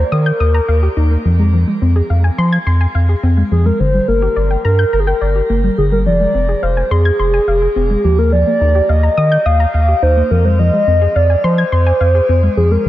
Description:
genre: synth-pop.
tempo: 106 BPM.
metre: 4/4.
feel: straight.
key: F dorian.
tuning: A4 = 436 Hz.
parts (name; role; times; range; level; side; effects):
hollow clarinet-like synth lead; melody; 0.0-12.9 s; G4 to F5; -16 LUFS; equal; chorus, shimmer reverb.
soft round pluck; arpeggios; 0.0-12.9 s; D3 to Ab6; -19 LUFS; left 2 dB; chorus, shimmer reverb, tape echo.
round analog bass; bass; 0.0-12.9 s; F1 to F3; -13 LUFS; equal; none.
room: light reverb.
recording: none.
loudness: -11 LUFS.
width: side -14 dB against mid.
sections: 0.0-12.9 A section.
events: none.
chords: 0.0 Ebadd9; 1.3 Fm; 3.8 Gm; 6.1 Fm; 8.0 Ebadd9; 10.3 Fm.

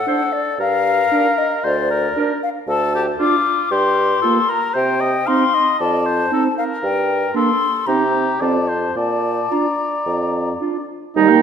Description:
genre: quick classical-period movement for wind quintet.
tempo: 107-117 BPM.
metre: 4/4.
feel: rubato.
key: Bb major.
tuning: A4 = 440 Hz.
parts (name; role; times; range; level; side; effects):
mellow hollow silver concert flute; melody; 0.0-10.6 s; D5 to D6; -20 LUFS; left 5 dB; none.
warm oboe; second line; 0.0-11.4 s; F4 to G5; -23 LUFS; left 1 dB; none.
clear clarinet; accompaniment; 0.1-11.4 s; D4 to C5; -21 LUFS; right 10 dB; none.
warm French horn; accompaniment; 0.1-11.4 s; G3 to D4; -23 LUFS; right 2 dB; none.
mellow bassoon; bass; 0.6-11.4 s; D2 to C3; -22 LUFS; right 2 dB; none.
room: wet scoring stage reverb, RT60 1.5 s.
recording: none.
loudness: -16 LUFS.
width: side -7 dB against mid.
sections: 0.0-11.2 A section.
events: none.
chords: 0.0 D7; 0.6 Gm; 2.7 Dm; 3.7 Gm7; 4.8 Cm; 5.8 F7; 6.8 Gm; 7.9 Cm; 8.4 F; 9.0 Bb.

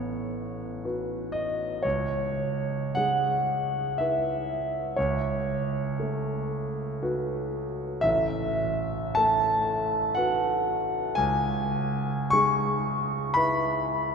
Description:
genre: classical, impressionist solo piano.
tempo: 58 BPM.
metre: 3/4.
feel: uneven beats, rubato.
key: unclear.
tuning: A4 = 438 Hz.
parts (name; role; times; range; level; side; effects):
clear concert grand piano; solo; 0.0-14.1 s; A1 to C#6; -25 LUFS; equal; none.
room: wet cathedral reverb, RT60 5.5 s.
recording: recorded in a church or concert hall, nothing above 10.3 kHz.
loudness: -25 LUFS.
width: side -6 dB against mid.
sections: 0.0-14.1 A section.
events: none.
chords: 0.0 Bsus2/A; 1.8 C#m7; 5.0 Bsus2/C#; 8.0 Asus2; 11.2 C#m7.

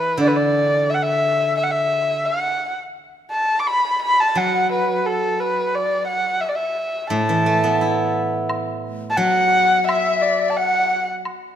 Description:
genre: chinese traditional, Chinese chamber ensemble.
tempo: 87 BPM.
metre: 2/4.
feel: straight.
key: A zhi mode.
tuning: A4 = 438 Hz.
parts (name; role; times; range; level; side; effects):
dark erhu; melody; 0.0-11.1 s; A4 to D6; -19 LUFS; equal; none.
steel-string zither; accompaniment; 0.0-2.3, 4.4-11.2 s; A2 to E4; -22 LUFS; right 1 dB; none.
woodblock; percussion; 8.5-11.4 s; none; -30 LUFS; equal; none.
bright reedy large dizi; second line; 9.2-11.1 s; E5 to A5; -21 LUFS; left 6 dB; none.
room: moderate concert hall reverb, RT60 1.7 s.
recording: close, detailed microphones.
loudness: -17 LUFS.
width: side -9 dB against mid.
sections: 0.0-8.5 A section; 8.5-11.6 B section.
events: none.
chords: none.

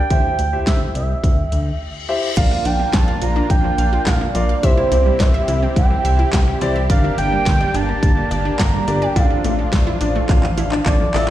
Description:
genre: synth-pop.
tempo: 106 BPM.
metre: 4/4.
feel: straight.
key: unclear.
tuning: A4 = 440 Hz.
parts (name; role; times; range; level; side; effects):
expressive synth lead; melody; 0.0-11.3 s; C5 to Bb5; -22 LUFS; right 3 dB; chorus, tape echo.
chorused synth bass; bass; 0.0-11.3 s; G1 to D2; -20 LUFS; equal; none.
clear baby grand piano; accompaniment; 0.1-11.3 s; D4 to A5; -25 LUFS; left 3 dB; none.
pop drum kit; drums; 0.1-11.3 s; crash cymbal, handclaps, hi-hat, kick drum, snare drum; -17 LUFS; equal; none.
reverse cymbal; sound effects; 1.6-2.4 s; none; -29 LUFS; left 6 dB; none.
lush unison pad; sustained chords; 2.4-11.3 s; C3 to G4; -24 LUFS; equal; chorus.
analog pluck; arpeggios; 2.4-11.3 s; D3 to F5; -26 LUFS; equal; chorus, tape echo.
room: light reverb.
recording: played on a big sound system in a bare room, large studio reverb.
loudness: -15 LUFS.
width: side -13 dB against mid.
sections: 0.0-2.4 A section; 2.4-11.3 B section.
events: reverse cymbal 1.6-2.4; break 1.8-2.4; grand piano fill 9.7-11.3; drum fill 10.3-11.3.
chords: 0.1 C; 2.4 Bb; 4.6 C; 6.9 Gm; 9.2 Dmadd9/A.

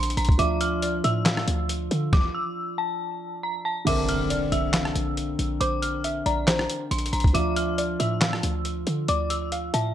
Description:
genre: hip hop, trap.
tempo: 138 BPM.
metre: 4/4.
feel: half-time.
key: D minor.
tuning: A4 = 440 Hz.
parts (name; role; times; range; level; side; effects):
dark detuned synth bell; melody; 0.0-9.9 s; A5 to F6; -30 LUFS; left 1 dB; chorus, phaser, low-pass filter.
dark baby grand piano; accompaniment; 0.0-9.9 s; D3 to Bb4; -30 LUFS; equal; low-pass filter.
short 808-style bass; bass; 0.0-9.9 s; Bb1 to D3; -28 LUFS; equal; none.
boom bap sampler-style drum kit; drums; 0.0-9.8 s; crash cymbal, handclaps, hi-hat, kick drum, rim click, snare drum; -25 LUFS; equal; vintage 12-bit sampler grit.
soft round pluck; second line; 0.4-9.9 s; C5 to F5; -32 LUFS; right 2 dB; chorus, tape echo.
impact; sound effects; 3.9-5.6 s; none; -35 LUFS; equal; none.
room: light reverb.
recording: none.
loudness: -22 LUFS.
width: side -11 dB against mid.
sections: 0.0-3.9 A section; 3.9-9.9 B section.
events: stop 2.1-3.9; impact 3.9-5.6.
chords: 0.4 Dmadd9; 3.9 Bbadd9; 7.3 Dmadd9.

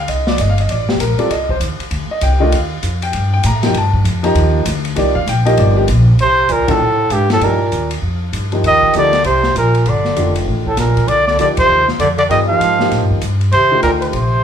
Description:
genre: modal jazz.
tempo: 196 BPM.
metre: 4/4.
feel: swing 62% on 8ths.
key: C dorian.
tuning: A4 = 440 Hz.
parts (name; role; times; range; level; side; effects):
warm upright piano; accompaniment; 0.0-14.1 s; Eb3 to Bb5; -18 LUFS; left 1 dB; none.
upright bass; bass; 0.0-14.4 s; F1 to A2; -16 LUFS; equal; none.
open jazz drum kit; drums; 0.1-14.2 s; hi-hat, kick drum, ride cymbal, snare drum; -23 LUFS; left 1 dB; none.
breathy trumpet; melody; 6.2-14.4 s; G4 to F5; -14 LUFS; equal; none.
clear bass clarinet; second line; 6.2-14.4 s; G2 to F3; -20 LUFS; right 4 dB; none.
room: light reverb.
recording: band playing live in one room.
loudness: -12 LUFS.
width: side -8 dB against mid.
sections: 0.0-6.2 A section; 6.2-14.4 B section.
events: band accent 6.6, 11.5.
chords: 0.0 Cm11.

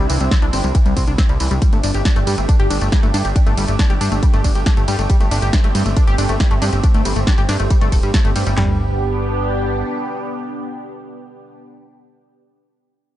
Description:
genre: uplifting trance.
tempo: 138 BPM.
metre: 4/4.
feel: straight.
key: G major.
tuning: A4 = 441 Hz.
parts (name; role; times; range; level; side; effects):
lush unison pad; sustained chords; 0.0-11.6 s; A3 to G4; -24 LUFS; right 2 dB; chorus, phaser, sidechain pumping.
tight sequenced synth; arpeggios; 0.0-8.8 s; E3 to A4; -24 LUFS; left 2 dB; chorus, sidechain pumping, ping-pong delay.
plucky analog bass; bass; 0.0-9.8 s; D1 to G2; -19 LUFS; equal; tube saturation, sidechain pumping.
house drum kit; drums; 0.1-8.6 s; hi-hat, ride cymbal, snare drum, tambourine; -25 LUFS; equal; sidechain pumping on hats, sidechain pumping on cymbals, sidechain pumping on perc.
house drum kit; drums; 0.3-8.7 s; handclaps, kick drum, snare drum, toms; -15 LUFS; equal; none.
room: little or no reverb.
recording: dark, warm production, nothing above 10.4 kHz.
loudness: -14 LUFS.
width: side -14 dB against mid.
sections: 0.0-8.6 A section; 8.6-12.1 B section.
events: drop 0.0-8.6.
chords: 0.0 Cadd9; 1.6 Gsus2; 8.6 G.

